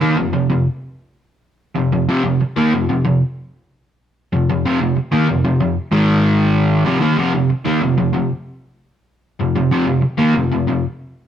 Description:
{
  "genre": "rock",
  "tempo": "94 BPM",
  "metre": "4/4",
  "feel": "straight",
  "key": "F minor",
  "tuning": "A4 = 440 Hz",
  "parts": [
    { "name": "overdriven semi-hollow guitar", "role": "solo", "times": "0.0-10.8 s", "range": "F2 to Bb3", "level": "-14 LUFS", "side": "equal", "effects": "none" }
  ],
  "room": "moderate stone room reverb, RT60 1.0 s",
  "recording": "rough rehearsal-room recording, tube saturation",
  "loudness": "-14 LUFS",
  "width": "side -9 dB against mid",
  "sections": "0.0-11.3 A section",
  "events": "none",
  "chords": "0.0 F5; 5.9 Ab5; 6.9 F5",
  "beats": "0.18 0.82 1.45 | 2.09 2.73 3.36 4.00 | 4.63 5.27 5.91 6.54 | 7.17 7.81 8.44 9.08 | 9.71 10.35"
}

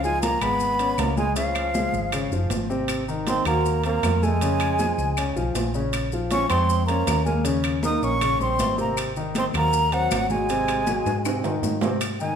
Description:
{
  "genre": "Afro-Cuban jazz",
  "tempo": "158 BPM",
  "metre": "4/4",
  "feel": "straight",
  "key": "Ab mixolydian",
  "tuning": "A4 = 438 Hz",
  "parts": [
    { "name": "breathy concert flute", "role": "melody", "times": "0.0-12.4 s", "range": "F5 to Eb6", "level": "-25 LUFS", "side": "equal", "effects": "none" },
    { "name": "bright trombone", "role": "second line", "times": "0.0-11.6 s", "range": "F3 to Eb4", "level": "-29 LUFS", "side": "right 5 dB", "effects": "none" },
    { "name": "warm concert grand piano", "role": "accompaniment", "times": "0.0-12.4 s", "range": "C3 to Eb5", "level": "-28 LUFS", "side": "left 3 dB", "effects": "none" },
    { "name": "hollow-body short-scale fingered electric bass", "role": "bass", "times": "0.0-12.4 s", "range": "Gb1 to Ab2", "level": "-27 LUFS", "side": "equal", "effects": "none" },
    { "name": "congas", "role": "percussion", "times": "0.0-12.4 s", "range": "none", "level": "-32 LUFS", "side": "left 1 dB", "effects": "none" },
    { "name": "maracas", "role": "percussion", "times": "0.0-12.4 s", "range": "none", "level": "-38 LUFS", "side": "left 7 dB", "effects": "none" },
    { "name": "timbales", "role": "percussion", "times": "0.2-12.2 s", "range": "none", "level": "-32 LUFS", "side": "right 6 dB", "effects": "none" },
    { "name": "claves", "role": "percussion", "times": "0.4-12.2 s", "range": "none", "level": "-37 LUFS", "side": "left 6 dB", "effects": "none" }
  ],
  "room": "wet large studio reverb, RT60 1.3 s",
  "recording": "minimal, uncompressed stereo recording",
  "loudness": "-20 LUFS",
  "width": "side -7 dB against mid",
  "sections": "0.0-12.0 A section",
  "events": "drum fill 11.1-12.0",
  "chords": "0.0 Db7; 2.9 Ab7; 4.4 Bbm7; 7.5 Eb7; 9.0 Ab7",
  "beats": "0.23 0.61 0.99 | 1.37 1.75 2.13 2.51 | 2.89 3.27 3.65 4.03 | 4.41 4.79 5.17 5.55 | 5.93 6.32 6.70 7.08 | 7.46 7.83 8.21 8.60 | 8.97 9.35 9.73 10.11 | 10.49 10.87 11.25 11.63 | 12.01"
}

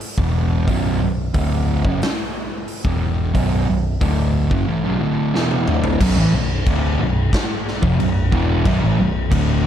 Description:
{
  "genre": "stoner and doom metal",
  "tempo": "90 BPM",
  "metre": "4/4",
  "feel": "straight",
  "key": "B minor",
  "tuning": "A4 = 439 Hz",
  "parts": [
    { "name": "big rock drum kit", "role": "drums", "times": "0.0-9.5 s", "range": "crash cymbal, hi-hat, kick drum, snare drum, toms", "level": "-22 LUFS", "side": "left 1 dB", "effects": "none" },
    { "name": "fuzz guitar", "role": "riff", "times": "0.2-9.7 s", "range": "B1 to E3", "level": "-20 LUFS", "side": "right 1 dB", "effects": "distortion" },
    { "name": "hollow-body short-scale picked electric bass", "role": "bass", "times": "0.2-9.6 s", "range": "B0 to A1", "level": "-21 LUFS", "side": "equal", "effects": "overdrive" },
    { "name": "thick fuzz guitar", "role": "riff", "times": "6.0-9.6 s", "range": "B1 to E3", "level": "-22 LUFS", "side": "equal", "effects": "distortion" }
  ],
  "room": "light reverb",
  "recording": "dark, warm production",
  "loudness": "-16 LUFS",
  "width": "side -10 dB against mid",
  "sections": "0.0-6.0 A section; 6.0-9.7 B section",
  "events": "drum fill 5.3-6.0",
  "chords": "0.0 Bm",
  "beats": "0.01 | 0.68 1.35 2.01 2.68 | 3.34 4.01 4.67 5.34 | 6.00 6.67 7.33 7.99 | 8.65 9.32"
}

